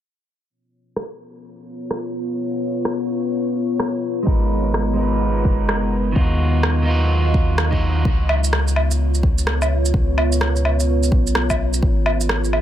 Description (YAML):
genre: future garage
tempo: 127 BPM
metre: 4/4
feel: swing 63% on 16ths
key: unclear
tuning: A4 = 440 Hz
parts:
  - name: deep dark ambient pad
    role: sustained chords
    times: 1.7-12.6 s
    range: F#3 to A#5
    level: -24 LUFS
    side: left 1 dB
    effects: chorus, built-in reverb, sidechain pumping
  - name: electronic rim click, woodblock and shaker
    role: drums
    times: 1.0-12.6 s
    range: none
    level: -22 LUFS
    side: equal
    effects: none
  - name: electric guitar at the edge of break-up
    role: accompaniment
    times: 4.2-8.0 s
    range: D#3 to B4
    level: -24 LUFS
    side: right 3 dB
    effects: vintage 12-bit sampler grit, sidechain pumping, digital delay
  - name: warm sub bass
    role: bass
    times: 4.3-12.6 s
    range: F#1 to D#2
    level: -20 LUFS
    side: equal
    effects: sidechain pumping
  - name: electronic kick drum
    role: drums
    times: 4.3-11.9 s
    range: none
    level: -18 LUFS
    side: equal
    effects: none
room: light reverb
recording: low-pass filter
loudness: -17 LUFS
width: side -11 dB against mid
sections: 0.5-8.1 A section; 8.1-12.6 B section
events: filter sweep 0.5-8.1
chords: 0.5 C#7; 4.3 G#madd9; 6.2 D#madd9; 8.1 C#7; 11.8 G#madd9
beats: | 0.50 0.97 1.44 1.91 | 2.39 2.86 3.33 3.80 | 4.28 4.75 5.22 5.69 | 6.17 6.64 7.11 7.58 | 8.05 8.53 9.00 9.47 | 9.95 10.42 10.89 11.36 | 11.84 12.31